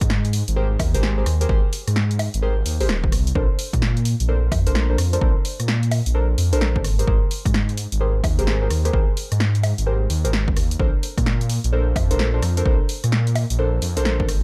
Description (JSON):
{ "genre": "UK garage, two-step garage", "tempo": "129 BPM", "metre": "4/4", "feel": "swing 64% on 16ths", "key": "Bb major", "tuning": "A4 = 440 Hz", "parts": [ { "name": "dark detuned saw bass", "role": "bass", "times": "0.0-14.4 s", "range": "Eb1 to Bb2", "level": "-22 LUFS", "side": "equal", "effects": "none" }, { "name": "electronic kick drum", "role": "drums", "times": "0.0-14.3 s", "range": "none", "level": "-23 LUFS", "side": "equal", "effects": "overdrive" }, { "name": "punchy analog drum machine", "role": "drums", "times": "0.0-14.4 s", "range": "bongos, hi-hat, rim click, snare drum", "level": "-29 LUFS", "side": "equal", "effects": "overdrive" }, { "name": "deep mellow chord stab", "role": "stabs", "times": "0.6-14.3 s", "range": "D4 to C5", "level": "-28 LUFS", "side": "equal", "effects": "chorus, tape echo" } ], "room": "little or no reverb", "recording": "dark, warm production", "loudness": "-20 LUFS", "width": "mono", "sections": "0.0-14.4 A section", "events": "none", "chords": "0.0 Abmaj9; 3.4 Bbmaj9; 6.8 Abmaj9; 10.8 Bbmaj9", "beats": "0.10 0.56 1.03 | 1.49 1.96 2.42 2.89 | 3.35 3.82 4.28 4.75 | 5.21 5.68 6.14 6.61 | 7.08 7.54 8.01 8.47 | 8.94 9.40 9.87 10.33 | 10.80 11.26 11.73 12.19 | 12.66 13.12 13.59 14.05" }